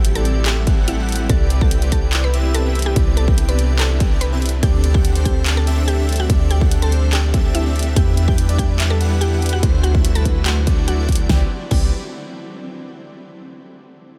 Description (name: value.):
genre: future bass.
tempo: 144 BPM.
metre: 4/4.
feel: half-time.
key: C lydian.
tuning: A4 = 440 Hz.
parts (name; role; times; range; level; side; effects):
shimmering ambient pad; sustained chords; 0.1-11.5 s; C3 to E4; -35 LUFS; equal; chorus, built-in reverb, phaser, sidechain pumping.
airy dreamy lead; arpeggios; 0.0-11.9 s; B4 to G5; -36 LUFS; equal; chorus, sidechain pumping.
soft supersaw; riff; 0.0-11.9 s; A3 to G5; -29 LUFS; equal; sidechain pumping, tape echo.
warm 808-style bass; bass; 0.0-11.9 s; A1 to E2; -20 LUFS; equal; sidechain pumping.
big-room dance drum kit; drums; 0.0-11.8 s; crash cymbal, handclaps, hi-hat, snare drum; -29 LUFS; equal; studio reverb.
mallet-like synth pluck; melody; 0.2-11.9 s; E4 to B5; -30 LUFS; equal; chorus, sidechain pumping, delay.
electronic kick drum; drums; 0.7-11.8 s; none; -20 LUFS; equal; studio reverb.
room: light reverb.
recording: none.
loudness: -17 LUFS.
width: mono.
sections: 0.0-11.3 A section; 11.3-13.0 B section.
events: drop 0.0-11.3.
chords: 0.0 Am7; 1.3 Cmaj9; 4.6 D7sus4; 8.0 Em7; 9.6 D9; 11.3 Cmaj9.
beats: 0.05 0.46 0.88 | 1.30 1.71 2.13 2.55 | 2.96 3.38 3.80 4.21 | 4.63 5.05 5.46 5.88 | 6.30 6.71 7.13 7.55 | 7.96 8.38 8.80 9.21 | 9.63 10.05 10.46 10.88 | 11.30 11.71.